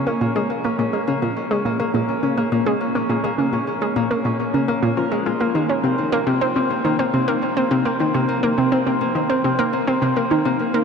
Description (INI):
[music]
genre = ambient, sequencer-driven space music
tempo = 104 BPM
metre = 4/4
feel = straight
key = Bb minor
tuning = A4 = 439 Hz
[part]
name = concert harp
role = arpeggios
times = 0.0-10.8 s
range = Ab3 to Bb4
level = -23 LUFS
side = left 2 dB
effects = auto-pan, ping-pong delay
[part]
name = analog pluck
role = riff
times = 0.0-10.8 s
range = Bb2 to Db4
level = -19 LUFS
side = equal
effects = chorus, ping-pong delay
[sound]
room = wet huge ambient reverb, RT60 7.7 s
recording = dark, warm production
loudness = -18 LUFS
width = side -6 dB against mid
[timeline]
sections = 0.0-10.8 A section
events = none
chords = 0.0 Bbm7; 5.8 Cm7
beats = 0.07 0.64 | 1.22 1.80 2.38 2.95 | 3.53 4.11 4.68 5.26 | 5.84 6.41 6.99 7.57 | 8.14 8.72 9.30 9.88 | 10.45